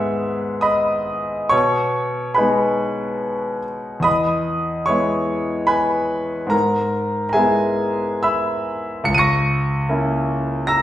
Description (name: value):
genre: classical, romantic nocturne for solo piano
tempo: 71 BPM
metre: 3/4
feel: uneven beats, rubato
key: unclear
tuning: A4 = 440 Hz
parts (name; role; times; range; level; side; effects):
- clear concert grand piano; solo; 0.0-10.8 s; C#2 to D#7; -17 LUFS; equal; none
room: wet recital hall reverb, RT60 1.3 s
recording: recorded in a church or concert hall, nothing above 10.9 kHz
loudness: -17 LUFS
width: side -12 dB against mid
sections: 0.0-10.8 A section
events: none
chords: 0.0 G#m; 1.5 G#m/B; 6.5 E/G#; 9.1 A#dim/C#